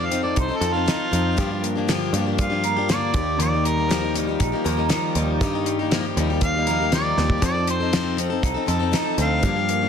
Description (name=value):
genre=folk rock and heartland rock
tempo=119 BPM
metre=4/4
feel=straight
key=unclear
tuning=A4 = 440 Hz
part: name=mellow harmonica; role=melody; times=0.0-9.9 s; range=F4 to F5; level=-25 LUFS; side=right 1 dB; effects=none
part: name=picked plugged-in steel-string acoustic guitar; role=accompaniment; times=0.0-9.9 s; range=G2 to A4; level=-26 LUFS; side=left 8 dB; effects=none
part: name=electric guitar through a small old amp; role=riff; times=0.0-9.9 s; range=G2 to Bb4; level=-27 LUFS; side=right 3 dB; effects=analog chorus
part: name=picked electric bass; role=bass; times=0.0-9.9 s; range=Bb1 to G2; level=-25 LUFS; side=right 1 dB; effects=none
part: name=damped 70s drum kit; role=drums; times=0.1-9.8 s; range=hi-hat, kick drum, snare drum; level=-24 LUFS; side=equal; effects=none
room=light reverb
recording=dense, heavily limited modern master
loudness=-19 LUFS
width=side -7 dB against mid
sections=0.0-9.9 A section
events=harmonica solo 0.0-9.9; drum fill 7.2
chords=0.0 F7; 1.4 Gm7; 3.1 Ebadd9; 7.4 F7